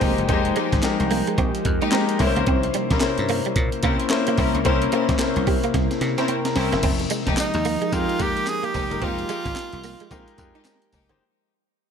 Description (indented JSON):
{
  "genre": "R&B, new jack swing",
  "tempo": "110 BPM",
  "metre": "4/4",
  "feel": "swing 61% on 16ths",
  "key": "unclear",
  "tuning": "A4 = 438 Hz",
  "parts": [
    { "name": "clear concert grand piano", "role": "accompaniment", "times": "0.0-11.2 s", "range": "Ab3 to Bb5", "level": "-26 LUFS", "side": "left 4 dB", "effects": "none" },
    { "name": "glassy FM pad", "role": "sustained chords", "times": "0.0-11.2 s", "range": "C3 to Bb4", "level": "-28 LUFS", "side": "left 2 dB", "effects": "ensemble chorus, built-in reverb" },
    { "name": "direct-recorded clean electric guitar", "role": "riff", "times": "0.0-11.2 s", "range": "G3 to Eb4", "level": "-29 LUFS", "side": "right 6 dB", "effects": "ensemble chorus" },
    { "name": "rich studio string section", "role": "stabs", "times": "0.0-11.1 s", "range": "Ab3 to Bb4", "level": "-28 LUFS", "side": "left 3 dB", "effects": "ping-pong delay" },
    { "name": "dry thumbed slap bass", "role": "bass", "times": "0.0-11.2 s", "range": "F1 to C3", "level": "-26 LUFS", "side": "equal", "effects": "none" },
    { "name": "breakbeat sampler-style drum kit", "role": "drums", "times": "0.0-11.2 s", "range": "crash cymbal, handclaps, hi-hat, kick drum, snare drum, tambourine", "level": "-25 LUFS", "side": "equal", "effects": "none" },
    { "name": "clear tenor saxophone", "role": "melody", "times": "7.4-10.7 s", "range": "Eb4 to Ab4", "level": "-26 LUFS", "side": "right 2 dB", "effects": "none" }
  ],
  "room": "light reverb",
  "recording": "none",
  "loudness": "-19 LUFS",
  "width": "side -7 dB against mid",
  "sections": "0.0-6.8 A section; 6.8-11.2 B section",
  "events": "drum fill 5.7-6.8; fade-out 6.8-11.2",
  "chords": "0.0 Fm11; 2.2 C7b9; 6.8 Fm11"
}